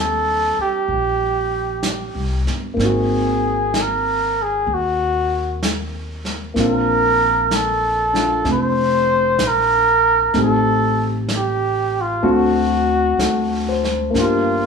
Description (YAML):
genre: jazz ballad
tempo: 63 BPM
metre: 4/4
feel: swing 67% on 8ths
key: Bb major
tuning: A4 = 436 Hz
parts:
  - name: trumpet with cup mute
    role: melody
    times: 0.0-14.7 s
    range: F4 to C5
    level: -18 LUFS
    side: equal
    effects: none
  - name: warm concert grand piano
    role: accompaniment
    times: 0.0-14.7 s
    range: G3 to C5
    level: -22 LUFS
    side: left 2 dB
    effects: none
  - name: upright bass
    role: bass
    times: 0.0-14.7 s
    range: F1 to Eb2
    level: -24 LUFS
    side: equal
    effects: none
  - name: vintage brush drum kit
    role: drums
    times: 0.9-14.7 s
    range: brushed snare drum, hi-hat, snare drum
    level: -27 LUFS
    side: right 1 dB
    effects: none
room: moderate large studio reverb, RT60 1.1 s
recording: band playing live in one room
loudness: -16 LUFS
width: side -5 dB against mid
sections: 0.0-14.1 A section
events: none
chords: 0.0 Ebmaj13; 2.8 Ab9; 6.6 Bbmaj7; 10.3 Am7b5; 12.2 D7; 14.1 Gm7